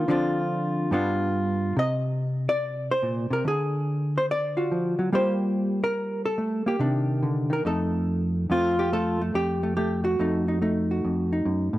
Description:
solo jazz; 142 BPM; 4/4; swing 66% on 8ths; A4 = 440 Hz
hollow-body jazz guitar; solo; 0.0-11.8 s; F2 to Eb5; -23 LUFS; equal
digital ambience; dry, close 1970s-style studio recording; -23 LUFS; side -15 dB against mid
0.0-8.5 A section; 8.5-11.8 B section
0.1 Dm7; 0.9 G7; 1.8 Cm9; 3.4 Ddim; 5.1 Gm7; 6.8 Cmadd9; 7.7 F7; 8.5 Fadd9; 10.2 F7b9

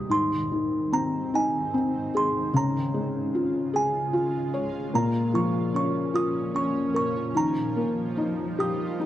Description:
children's music, lullaby; 50 BPM (dotted quarters); 6/8; rubato; Ab major; A4 = 440 Hz
music box; melody; 0.0-9.1 s; Ab5 to Eb6; -29 LUFS; right 3 dB
felt-muted upright piano; accompaniment; 0.0-9.1 s; Ab2 to Db5; -25 LUFS; left 2 dB
granular cloud pad; sustained chords; 0.0-9.1 s; Ab2 to F4; -32 LUFS; right 2 dB; built-in reverb
light reverb, studio reverb; dry, close 1970s-style studio recording; -23 LUFS; side -12 dB against mid
0.1-9.1 A section
0.1 Ab; 2.5 Db; 4.9 Bbm; 7.3 Ebadd9

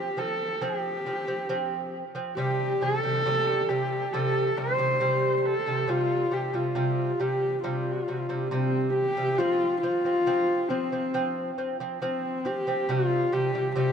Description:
mongolian traditional; 68 BPM; 4/4; straight; F gong mode; A4 = 440 Hz
warm horsehead fiddle; melody; 0.0-13.9 s; C4 to C5; -27 LUFS; left 1 dB
lute; arpeggios; 0.0-13.9 s; C3 to C4; -28 LUFS; right 1 dB
moderate huge ambient reverb, RT60 6.0 s; dark, warm production; -24 LUFS; side -7 dB against mid
0.0-9.4 A section; 9.4-13.9 B section
0.0 F5; 2.4 C5; 9.4 F5; 12.9 C5

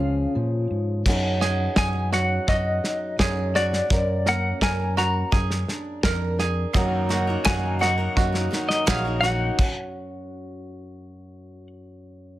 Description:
indie folk with a building arrangement; 84 BPM; 4/4; straight; A4 = 440 Hz
semi-hollow electric guitar; melody; 0.0-11.7 s; D5 to A#5; -25 LUFS; left 2 dB; tremolo
fingerpicked old ladder-braced acoustic guitar; accompaniment; 0.0-12.4 s; F#2 to A#4; -30 LUFS; equal
fingered electric bass; bass; 0.0-9.5 s; A#1 to A#2; -25 LUFS; equal
cloth-damped thuddy drum kit; drums; 1.1-9.8 s; crash cymbal, kick drum, snare drum; -24 LUFS; equal
bluegrass banjo; arpeggios; 1.4-9.6 s; F#4 to A#4; -30 LUFS; right 6 dB
bright upright piano; accompaniment; 6.7-9.6 s; F#1 to E#5; -33 LUFS; right 7 dB
picked steel-string acoustic guitar; accompaniment; 6.7-9.6 s; D#3 to A#4; -31 LUFS; left 2 dB
group handclap; percussion; 7.5-9.0 s; -28 LUFS; right 6 dB
little or no reverb; -20 LUFS; side -15 dB against mid
0.0-1.1 A section; 1.1-12.4 B section
stop 9.6-12.4
0.0 C#; 1.1 B6/F#; 3.9 A#/F#; 6.7 D#m/F#; 9.6 N.C.

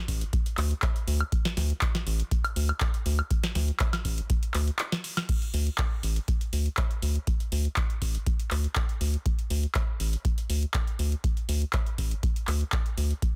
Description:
acid house; 121 BPM; 4/4; straight; A4 = 441 Hz
round analog bass; bass; 0.1-13.1 s; A1 to D2; -28 LUFS; equal; sidechain pumping
booming analog drum machine; drums; 0.1-13.3 s; crash cymbal, handclaps, hi-hat, snare drum, woodblock; -35 LUFS; equal
electronic kick drum; drums; 0.1-13.3 s; -30 LUFS; equal
digital ambience; dense, heavily limited modern master; -28 LUFS; mono
0.0-5.3 A section; 5.3-13.4 B section
drop 0.0-5.3; break 4.8-5.3; drum fill 4.9-5.3

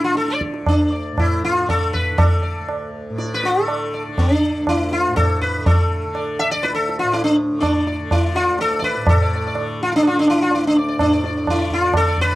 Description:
indian classical, Hindustani; 122 BPM; 7/4; straight; D raga shivaranjani; A4 = 442 Hz
sitar; melody; 0.0-12.4 s; D4 to E5; -18 LUFS; left 1 dB
tanpura; drone; 0.0-12.4 s; D2 to D3; -29 LUFS; equal
tabla; percussion; 0.2-12.4 s; -20 LUFS; right 1 dB
light reverb; dry, close 1970s-style studio recording; -16 LUFS; side -16 dB against mid
0.0-9.1 A section; 9.1-12.4 B section
speeding up 0.0-12.4

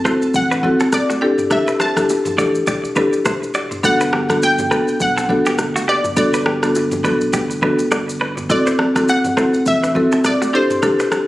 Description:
afrobeats; 103 BPM; 4/4; swing 58% on 16ths; G major; A4 = 439 Hz
analog pluck; melody; 0.0-11.3 s; C5 to A5; -20 LUFS; equal; chorus, digital delay
marimba with medium mallets; accompaniment; 0.0-11.2 s; B3 to A4; -17 LUFS; left 1 dB
direct-recorded clean electric guitar; riff; 0.1-11.2 s; A3 to D5; -23 LUFS; right 1 dB; digital delay
warm sub bass; bass; 0.1-11.0 s; D1 to B1; -31 LUFS; equal
afro-pop drum kit; drums; 0.1-11.3 s; kick drum, rim click, shaker, toms; -23 LUFS; equal
bongos and congas; percussion; 0.1-11.3 s; -28 LUFS; equal
light reverb; recorded on a phone in the room, studio reverb, compression; -14 LUFS; side -16 dB against mid
0.0-11.3 A section
0.0 D7; 1.2 C69/E; 3.8 Gmaj7; 8.5 D7; 10.5 C69/E

